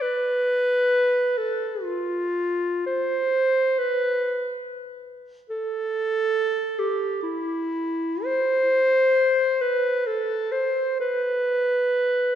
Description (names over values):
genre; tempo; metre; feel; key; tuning
classical, free, expressive piece for unaccompanied clarinet; free time; none; none; unclear; A4 = 439 Hz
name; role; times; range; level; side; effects
warm clarinet; solo; 0.0-12.4 s; E4 to C5; -21 LUFS; equal; none
room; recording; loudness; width
wet concert hall reverb, RT60 2.2 s; minimal, uncompressed stereo recording; -21 LUFS; side -10 dB against mid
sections
0.0-12.4 A section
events
none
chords
none